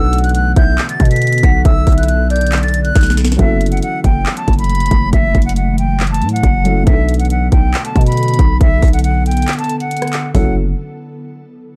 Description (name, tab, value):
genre	hip hop, trap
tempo	138 BPM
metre	4/4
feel	half-time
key	F# phrygian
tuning	A4 = 440 Hz
part	silver concert flute	melody	0.0-10.5 s	E5 to B6	-22 LUFS	equal	none
part	soft octave-layered synth lead	second line	0.0-2.9 s	D5 to F#5	-25 LUFS	equal	chorus, phaser, tape echo
part	dark baby grand piano	accompaniment	0.0-10.6 s	B2 to A4	-26 LUFS	equal	none
part	ethereal airy pad	sustained chords	0.4-10.5 s	D3 to A4	-26 LUFS	equal	ensemble chorus, built-in reverb
part	growling 808-style bass	bass	0.0-10.8 s	F#1 to B2	-17 LUFS	equal	none
part	trap drum kit	drums	0.1-10.4 s	handclaps, hi-hat, kick drum, rim click, snare drum, toms	-17 LUFS	equal	none
room	digital ambience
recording	dark, warm production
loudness	-13 LUFS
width	mono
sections	0.0-3.4 A section; 3.4-10.3 B section; 10.3-11.8 C section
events	drum fill 3.0-3.4; break 9.5-10.3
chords	0.0 Bm7; 3.4 F#m7; 6.9 Bm7; 10.3 F#m7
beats	0.35 0.78 1.22 | 1.65 2.09 2.52 2.96 | 3.39 3.83 4.26 4.70 | 5.13 5.56 6.00 6.43 | 6.87 7.30 7.74 8.17 | 8.61 9.04 9.48 9.91 | 10.35